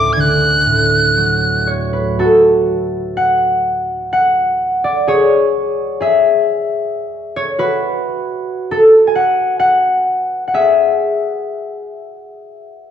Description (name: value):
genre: celtic folk, Celtic slow air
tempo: 65 BPM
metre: 3/4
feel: uneven beats, rubato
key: unclear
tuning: A4 = 440 Hz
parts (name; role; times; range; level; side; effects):
- breathy tin whistle; melody; 0.0-1.7 s; D6 to G#6; -14 LUFS; right 1 dB; none
- concert harp; accompaniment; 0.0-12.8 s; D2 to G#5; -13 LUFS; left 1 dB; none
room: moderate recital hall reverb, RT60 1.6 s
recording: none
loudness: -12 LUFS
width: side -9 dB against mid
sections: 0.0-2.2 A section; 2.2-12.9 B section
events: harp solo 2.2-12.9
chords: 0.0 D; 2.2 N.C.; 5.1 F#7sus2; 7.8 N.C.